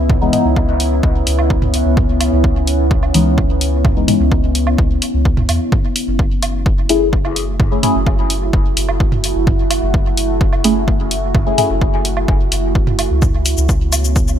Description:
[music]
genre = dub techno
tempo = 128 BPM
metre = 4/4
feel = straight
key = F# minor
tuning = A4 = 440 Hz
[part]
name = deep dark ambient pad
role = sustained chords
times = 0.0-14.4 s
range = A3 to F#4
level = -20 LUFS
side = right 1 dB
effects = chorus, built-in reverb, sidechain pumping
[part]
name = soft dub sub bass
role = bass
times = 0.0-14.4 s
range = F#1 to E2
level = -18 LUFS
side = equal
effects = sidechain pumping
[part]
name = electronic kick drum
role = drums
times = 0.1-14.3 s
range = none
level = -15 LUFS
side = equal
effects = none
[part]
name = electronic toms and woodblock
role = percussion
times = 0.1-14.0 s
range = none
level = -25 LUFS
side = right 4 dB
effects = sidechain pumping on perc, sidechain pumping on toms, dub echo
[part]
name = deep mellow chord stab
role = stabs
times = 0.2-11.7 s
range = E3 to G#4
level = -18 LUFS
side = left 2 dB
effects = chorus, phaser, sidechain pumping, dub echo
[part]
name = electronic hi-hat and cabasa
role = drums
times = 0.3-14.4 s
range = none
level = -20 LUFS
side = left 2 dB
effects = none
[sound]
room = light reverb, digital ambience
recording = none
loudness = -13 LUFS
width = side -9 dB against mid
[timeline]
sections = 0.0-14.4 A section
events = filter sweep on synth stab 0.0-14.4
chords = 0.0 C#m7; 5.7 F#m7; 13.2 C#m7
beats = | 0.10 0.57 1.03 1.50 | 1.97 2.44 2.91 3.38 | 3.85 4.32 4.78 5.25 | 5.72 6.19 6.66 7.13 | 7.60 8.07 8.53 9.00 | 9.47 9.94 10.41 10.88 | 11.35 11.82 12.28 12.75 | 13.22 13.69 14.16

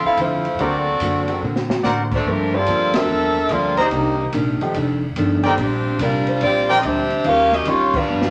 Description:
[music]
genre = jazz, big band swing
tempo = 144 BPM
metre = 4/4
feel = swing 66% on 8ths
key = unclear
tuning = A4 = 435 Hz
[part]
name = warm saxophone section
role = melody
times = 0.0-8.3 s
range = F3 to F5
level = -21 LUFS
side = equal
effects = none
[part]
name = archtop guitar, miked and amplified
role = accompaniment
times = 0.0-8.3 s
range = F2 to F#4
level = -26 LUFS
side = equal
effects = none
[part]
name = upright bass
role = bass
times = 0.0-8.3 s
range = F1 to Bb2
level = -29 LUFS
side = equal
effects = none
[part]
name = open jazz drum kit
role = drums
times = 0.2-8.3 s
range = crash cymbal, hi-hat, kick drum, ride cymbal, snare drum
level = -30 LUFS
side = equal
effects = none
[part]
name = warm concert grand piano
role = accompaniment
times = 0.6-6.8 s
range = Eb3 to A4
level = -30 LUFS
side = equal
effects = none
[part]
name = warm trumpet section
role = stabs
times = 0.6-6.8 s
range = Bb4 to Bb5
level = -23 LUFS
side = equal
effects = none
[sound]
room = wet studio reverb, RT60 0.7 s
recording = none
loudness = -19 LUFS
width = mono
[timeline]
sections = 0.0-8.3 A section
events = drum fill 1.4-1.8, 8.1; band accent 2.9, 7.9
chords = 0.0 Dm9; 0.6 D7b13; 2.3 Gm11; 3.9 Cm9; 4.8 F13; 5.6 Bb69; 7.2 Eb9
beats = 0.17 | 0.59 1.00 1.42 1.84 | 2.25 2.67 3.08 3.50 | 3.92 4.33 4.75 5.17 | 5.58 6.00 6.42 6.83 | 7.25 7.67 8.08

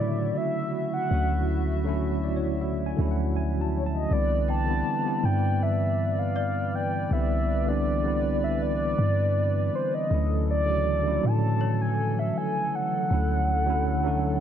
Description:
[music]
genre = R&B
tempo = 80 BPM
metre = 4/4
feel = straight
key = C major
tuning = A4 = 440 Hz
[part]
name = mellow horn-like synth lead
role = melody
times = 0.0-14.4 s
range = C5 to A5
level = -29 LUFS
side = right 1 dB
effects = chorus
[part]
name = tine electric piano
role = accompaniment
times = 0.0-14.4 s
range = C#3 to A5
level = -29 LUFS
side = equal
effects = fast stereo tremolo
[part]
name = hollow soft pad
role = sustained chords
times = 0.0-14.4 s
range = D3 to E5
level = -34 LUFS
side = equal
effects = chorus
[part]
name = warm 808-style bass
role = bass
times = 0.0-14.4 s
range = C2 to A2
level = -27 LUFS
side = equal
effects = none
[part]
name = worn celesta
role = texture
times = 4.5-13.0 s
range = C#5 to G5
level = -40 LUFS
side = left 5 dB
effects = stereo widening, digital delay
[sound]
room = little or no reverb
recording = none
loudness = -23 LUFS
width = side -9 dB against mid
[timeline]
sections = 0.0-4.1 A section; 4.1-14.4 B section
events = tine electric piano fill 1.9-4.1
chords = 0.0 Dmaj9; 4.1 Cmaj9; 10.1 Dmaj9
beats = 0.36 | 1.11 1.86 2.61 3.36 | 4.11 4.86 5.61 6.36 | 7.11 7.86 8.61 9.36 | 10.11 10.86 11.61 12.36 | 13.11 13.86

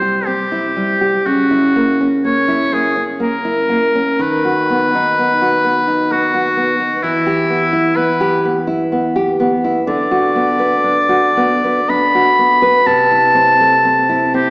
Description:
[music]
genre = romantic duo for oboe and classical guitar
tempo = 62 BPM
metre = 3/4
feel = uneven beats, rubato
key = unclear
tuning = A4 = 440 Hz
[part]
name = clear oboe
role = melody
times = 0.0-14.5 s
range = E4 to B5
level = -14 LUFS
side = equal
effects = none
[part]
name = nylon-string guitar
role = accompaniment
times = 0.0-14.5 s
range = C3 to B4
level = -15 LUFS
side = equal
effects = none
[sound]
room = wet scoring stage reverb, RT60 2.0 s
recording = recorded in a church or concert hall, small speaker sound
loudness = -12 LUFS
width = side -28 dB against mid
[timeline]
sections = 0.0-14.5 A section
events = none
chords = 0.0 C; 1.3 F#7/C#; 4.2 B/D#; 7.0 Em; 9.9 Bm/D; 12.9 Am/C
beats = 0.26 | 1.25 2.24 3.20 | 4.20 5.18 6.11 | 7.03 7.96 8.91 | 9.87 10.83 11.88 | 12.85 13.84

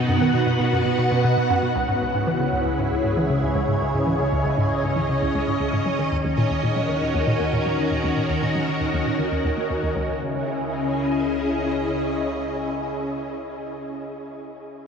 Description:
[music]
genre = ambient, sequencer-driven space music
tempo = 117 BPM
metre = 4/4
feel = straight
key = C# dorian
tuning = A4 = 440 Hz
[part]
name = phased string machine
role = sustained chords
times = 0.0-14.3 s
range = B2 to F#5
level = -22 LUFS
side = equal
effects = ensemble chorus, phaser, shimmer reverb
[part]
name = hollow square pluck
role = riff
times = 0.0-10.2 s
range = C#2 to A#3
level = -24 LUFS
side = equal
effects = chorus, cassette tape, analog delay
[part]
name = analog drone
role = bass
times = 2.4-11.5 s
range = C#2 to D#2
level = -36 LUFS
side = equal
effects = chorus
[part]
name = bubbling stepped-filter texture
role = texture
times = 1.9-10.0 s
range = C#4 to C#5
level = -30 LUFS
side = right 1 dB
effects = chorus, built-in reverb, shimmer reverb
[sound]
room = wet huge ambient reverb, RT60 9.3 s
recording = worn, warbling old tape, cassette tape, warbly pitch drift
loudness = -20 LUFS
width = side -6 dB against mid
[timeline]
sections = 0.0-1.8 A section; 1.8-10.0 B section; 10.0-14.1 C section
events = fade-out on synth drone 1.8-10.0; filter sweep on synth arpeggio sound 1.8-10.0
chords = 0.0 B; 1.8 C#madd9; 5.9 D#m7; 10.0 C#madd9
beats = 0.22 0.73 1.24 | 1.75 2.27 2.78 3.29 | 3.81 4.32 4.83 5.34 | 5.86 6.37 6.88 7.40 | 7.91 8.42 8.94 9.45 | 9.96 10.47 10.99 11.50 | 12.01 12.53 13.04 13.55

